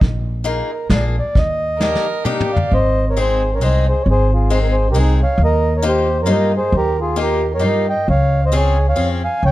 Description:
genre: musette waltz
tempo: 134 BPM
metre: 3/4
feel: swing 54% on 8ths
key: Ab major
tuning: A4 = 440 Hz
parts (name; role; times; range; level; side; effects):
- upright bass; bass; 0.0-9.5 s; Ab1 to G2; -17 LUFS; equal; none
- vintage brush drum kit; drums; 0.0-2.7 s; hi-hat, kick drum, snare drum, toms; -18 LUFS; equal; none
- picked swing-style acoustic guitar; accompaniment; 0.4-9.2 s; Ab3 to Ab4; -23 LUFS; left 5 dB; none
- mellow accordion; melody; 0.5-9.5 s; Eb4 to Ab5; -19 LUFS; right 1 dB; none
- rich violin; second line; 1.8-2.7 s; G4 to Bb4; -26 LUFS; right 7 dB; none
room: light reverb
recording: dark, warm production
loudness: -14 LUFS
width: side -16 dB against mid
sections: 0.0-2.7 A section; 2.7-9.5 B section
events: drum fill 1.8-2.7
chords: 0.0 Bb7sus4; 0.9 Bb7; 1.4 Ebmaj7; 2.7 Ab; 5.4 Ebadd9; 8.1 Dbmaj7

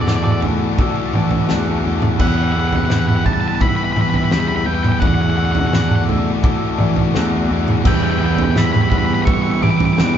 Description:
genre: post-rock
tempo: 85 BPM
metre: 4/4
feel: straight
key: E minor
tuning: A4 = 440 Hz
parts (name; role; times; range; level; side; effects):
- octave-fuzz lead guitar; melody; 0.0-10.2 s; D5 to D6; -22 LUFS; equal; distortion
- analog string pad; sustained chords; 0.0-10.2 s; F#4 to D6; -32 LUFS; left 2 dB; ensemble chorus
- glockenspiel with hard plastic mallets; arpeggios; 0.0-10.2 s; D6 to G6; -33 LUFS; right 4 dB; none
- mellow electric guitar; arpeggios; 0.0-10.2 s; E2 to F#4; -24 LUFS; left 1 dB; none
- overdriven electric guitar; riff; 0.0-10.2 s; E3 to D5; -22 LUFS; left 5 dB; none
- fuzz fingered electric bass; bass; 0.0-10.2 s; E2 to E3; -21 LUFS; equal; overdrive
- loose indie drum kit; drums; 0.1-10.1 s; crash cymbal, kick drum, snare drum, toms; -18 LUFS; right 2 dB; none
- overdriven semi-hollow guitar; riff; 7.9-10.2 s; E3 to E4; -21 LUFS; right 9 dB; none
room: moderate small room reverb, RT60 0.6 s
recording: band playing live in one room, nothing above 7.7 kHz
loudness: -14 LUFS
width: side -9 dB against mid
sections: 0.0-10.2 A section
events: build-up 0.0-10.2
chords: 0.0 D/E; 2.2 Emadd9; 5.0 D/E; 7.9 Emadd9

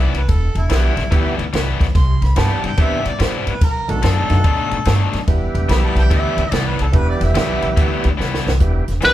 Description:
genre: electric blues shuffle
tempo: 144 BPM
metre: 4/4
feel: swing 65% on 8ths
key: E minor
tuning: A4 = 437 Hz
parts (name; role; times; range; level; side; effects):
- mellow harmonica; second line; 0.0-8.0 s; E4 to C6; -24 LUFS; right 1 dB; none
- cranked stack guitar; riff; 0.0-9.1 s; B2 to E4; -24 LUFS; left 6 dB; overdrive
- upright bass; bass; 0.0-9.1 s; E1 to A2; -18 LUFS; equal; none
- compact cocktail drum kit; drums; 0.1-9.1 s; hi-hat, kick drum, ride cymbal, snare drum; -19 LUFS; equal; none
- tonewheel organ; accompaniment; 0.7-9.1 s; D#3 to G4; -25 LUFS; right 3 dB; slow rotary speaker, overdrive
- biting lead guitar; melody; 9.1 s; B4; -9 LUFS; left 1 dB; overdrive
room: moderate large studio reverb, RT60 1.1 s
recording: band playing live in one room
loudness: -14 LUFS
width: side -13 dB against mid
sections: 0.0-8.6 A section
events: harmonica solo 0.0-8.6; drum fill 8.2-8.6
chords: 0.0 Em; 1.9 Cmaj7; 3.6 B7#9; 5.3 Em

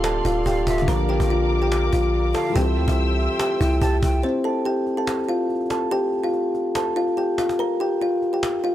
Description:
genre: hip hop, trap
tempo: 143 BPM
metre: 4/4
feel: half-time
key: unclear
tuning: A4 = 441 Hz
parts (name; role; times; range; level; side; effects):
- kalimba; melody; 0.0-8.7 s; C4 to Bb5; -21 LUFS; equal; none
- felt-muted upright piano; accompaniment; 0.0-4.3 s; D3 to G4; -29 LUFS; left 2 dB; none
- muted studio string section; sustained chords; 0.0-4.2 s; A4 to E6; -30 LUFS; equal; none
- long sustained 808-style bass; bass; 0.0-4.2 s; D1 to D2; -22 LUFS; equal; none
- cajon; drums; 0.0-8.7 s; none; -30 LUFS; equal; none
- breathy mellow silver concert flute; second line; 0.5-4.2 s; E5 to A5; -33 LUFS; right 2 dB; analog delay
room: small room ambience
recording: dry, gritty hardware recording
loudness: -19 LUFS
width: side -12 dB against mid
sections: 0.0-4.2 A section; 4.2-8.7 B section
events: break 4.2-8.7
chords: 0.0 Dm7; 0.9 Bb; 2.6 C; 4.2 Fadd9/C; 7.6 Bb5

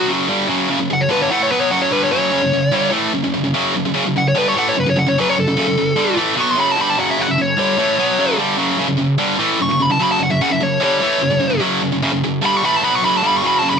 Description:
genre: metal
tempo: 148 BPM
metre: 4/4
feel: straight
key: unclear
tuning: A4 = 439 Hz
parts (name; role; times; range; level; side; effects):
- dark smooth lead guitar; melody; 0.0-13.8 s; A4 to C#6; -18 LUFS; left 1 dB; overdrive, digital delay
- high-gain distorted guitar; riff; 0.0-13.8 s; F#2 to B3; -16 LUFS; equal; distortion
room: light reverb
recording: none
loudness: -14 LUFS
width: side -6 dB against mid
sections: 0.0-13.8 A section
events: lead electric guitar solo 0.0-13.8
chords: 0.0 F#m

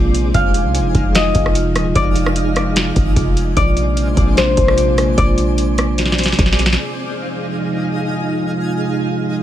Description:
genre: hip hop, atmospheric cloud-rap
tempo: 149 BPM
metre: 4/4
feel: half-time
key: F dorian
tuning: A4 = 441 Hz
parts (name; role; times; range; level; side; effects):
- Celtic harp; melody; 0.0-7.0 s; C5 to F5; -21 LUFS; left 3 dB; tape echo
- dark analog pad; sustained chords; 0.0-9.4 s; C3 to F4; -20 LUFS; right 1 dB; chorus, sidechain pumping
- warm 808-style bass; bass; 0.0-6.8 s; Eb1 to C2; -18 LUFS; equal; none
- twinkling granular texture; texture; 0.0-9.4 s; C4 to F5; -25 LUFS; equal; built-in reverb
- booming analog drum machine; drums; 0.1-6.8 s; hi-hat, kick drum, rim click, snare drum; -18 LUFS; equal; vintage 12-bit sampler grit
room: little or no reverb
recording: none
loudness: -14 LUFS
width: side -12 dB against mid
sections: 0.0-6.8 A section; 6.8-9.4 B section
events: drum fill 6.0-6.8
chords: 0.3 Fm7; 3.6 Bb9; 6.8 Fm7

